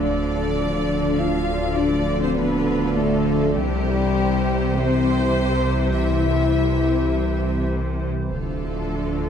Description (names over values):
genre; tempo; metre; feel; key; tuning
cinematic, hybrid orchestral and electronic film score; free time; none; none; D minor; A4 = 435 Hz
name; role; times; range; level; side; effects
rich symphonic violin section; melody; 0.0-9.3 s; E5 to F5; -40 LUFS; left 6 dB; none
clear symphonic violin section; second line; 0.0-9.3 s; G4 to F5; -30 LUFS; left 1 dB; none
rich symphonic viola section; accompaniment; 0.0-9.3 s; F4 to C5; -34 LUFS; right 1 dB; none
hollow soft pad; sustained chords; 0.0-9.3 s; E3 to D5; -28 LUFS; equal; chorus
mellow French horn section; sustained chords; 0.0-9.3 s; G3 to F4; -24 LUFS; left 5 dB; none
clear symphonic double bass section; bass; 0.0-9.3 s; C2 to D2; -28 LUFS; right 2 dB; none
dark detuned saw bass; bass; 0.0-9.3 s; D1 to C2; -28 LUFS; equal; none
dark tuba; bass; 0.0-9.3 s; C2 to D2; -28 LUFS; right 4 dB; none
rich symphonic cello section; bass; 0.0-9.3 s; C3 to D3; -29 LUFS; right 3 dB; none
impact; sound effects; 0.0-1.2 s; none; barely audible; none; none
room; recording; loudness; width
moderate scoring stage reverb, RT60 1.8 s; none; -19 LUFS; side -8 dB against mid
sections
0.0-9.3 A section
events
impact 0.0-1.2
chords
0.0 Dm; 3.6 C; 8.3 Dm